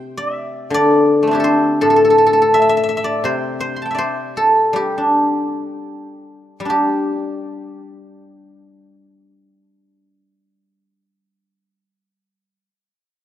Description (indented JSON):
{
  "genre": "chinese traditional, Chinese solo plucked strings",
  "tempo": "53-85 BPM",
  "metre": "2/4",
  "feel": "rubato",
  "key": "G zhi mode",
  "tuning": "A4 = 439 Hz",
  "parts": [
    { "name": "guzheng", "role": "solo", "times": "0.0-12.7 s", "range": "A2 to C6", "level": "-14 LUFS", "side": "equal", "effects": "none" }
  ],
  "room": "light reverb, studio reverb",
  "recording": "rough home demo mix",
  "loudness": "-14 LUFS",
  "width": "side -11 dB against mid",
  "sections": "0.0-6.7 A section; 6.7-11.1 B section",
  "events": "slowing down 3.3-6.7",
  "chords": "none"
}